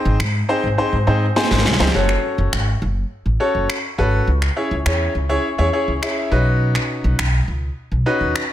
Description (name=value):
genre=dance-pop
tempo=103 BPM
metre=4/4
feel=straight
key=unclear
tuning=A4 = 440 Hz
part: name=bright grand piano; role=accompaniment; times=0.0-8.4 s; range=B#3 to G#5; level=-20 LUFS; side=left 1 dB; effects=none
part: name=upright bass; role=bass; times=0.1-8.3 s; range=F#1 to G#2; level=-19 LUFS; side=equal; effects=none
part: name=electronic finger snaps and snare drum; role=drums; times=0.2-8.5 s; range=none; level=-23 LUFS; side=equal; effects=overdrive
room=light reverb, studio ambience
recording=dense, heavily limited modern master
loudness=-16 LUFS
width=side -12 dB against mid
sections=0.0-1.9 A section; 1.9-8.5 B section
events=grand piano fill 1.1-1.9; drum fill 1.4-1.9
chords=0.0 G#; 1.9 F#m; 4.3 C#m; 6.3 Badd9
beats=0.20 0.78 1.36 | 1.95 2.53 3.11 3.69 | 4.28 4.86 5.44 6.02 | 6.61 7.19 7.77 8.35